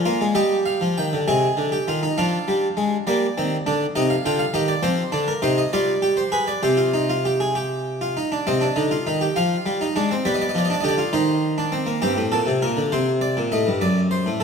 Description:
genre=classical, baroque-style 3-part fugue for harpsichord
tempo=67 BPM (dotted quarters)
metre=6/8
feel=straight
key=C minor from 4.8 s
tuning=A4 = 440 Hz
part: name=harpsichord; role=solo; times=0.0-14.4 s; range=F#2 to G5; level=-19 LUFS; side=equal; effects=none
room=moderate recital hall reverb, RT60 1.8 s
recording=none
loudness=-19 LUFS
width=side -6 dB against mid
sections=0.0-1.3 A section; 1.3-8.5 B section; 8.5-14.4 A section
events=none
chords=0.4 Eb/G; 1.3 Ab/C; 2.2 Ddim/F; 3.1 Gm; 3.9 Cm; 4.8 F5; 5.7 G7; 6.6 Cm; 9.4 Fm; 10.3 G7; 11.1 Cm/Eb; 12.0 Gm; 12.9 Cm; 13.8 D7/F#

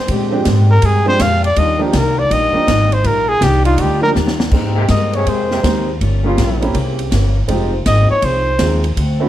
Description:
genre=jazz, big band swing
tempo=162 BPM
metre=4/4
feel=swing 65% on 8ths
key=Eb major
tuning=A4 = 439 Hz
part: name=mellow trumpet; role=melody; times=0.0-8.8 s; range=F4 to F5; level=-16 LUFS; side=equal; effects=plate reverb
part: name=picked steel-string acoustic guitar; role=accompaniment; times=0.1-9.2 s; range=Bb2 to Bb4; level=-23 LUFS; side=left 5 dB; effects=none
part: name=clear trombone section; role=sustained chords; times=0.1-8.5 s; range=C3 to Ab4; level=-23 LUFS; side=equal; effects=none
part: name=upright bass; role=bass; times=0.1-9.3 s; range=F1 to Bb2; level=-16 LUFS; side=equal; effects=none
part: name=swinging big-band drum kit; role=drums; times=0.1-9.1 s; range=crash cymbal, hi-hat, kick drum, ride cymbal, snare drum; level=-21 LUFS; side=equal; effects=none
part: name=warm concert grand piano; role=accompaniment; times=0.3-9.3 s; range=F3 to Ab4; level=-20 LUFS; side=right 4 dB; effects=none
room=moderate club reverb, RT60 0.6 s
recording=dark, warm production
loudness=-12 LUFS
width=side -12 dB against mid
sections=0.0-4.5 A section; 4.5-9.3 A section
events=trumpet solo 0.0-9.3; drum fill 4.2-4.5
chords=0.1 Bb13; 1.6 Ebmaj9; 4.5 Abmaj9; 6.0 Gm7b5; 6.7 C7b9; 7.5 Fm7

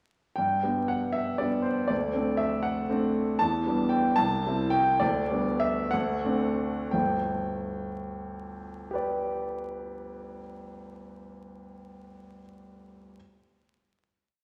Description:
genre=classical, romantic character piece for solo piano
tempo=57-81 BPM (dotted quarters)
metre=6/8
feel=rubato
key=G major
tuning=A4 = 438 Hz
part: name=warm grand piano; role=solo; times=0.4-13.2 s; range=G1 to A5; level=-29 LUFS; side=equal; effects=none
room=wet recital hall reverb, RT60 1.7 s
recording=vinyl crackle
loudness=-28 LUFS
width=mono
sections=0.4-6.9 A section; 6.9-10.9 final chord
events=slowing down 2.7-6.9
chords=0.4 G; 1.9 D7; 3.4 Em7; 4.2 Am7/C; 5.0 G/D; 5.9 D7; 6.9 G

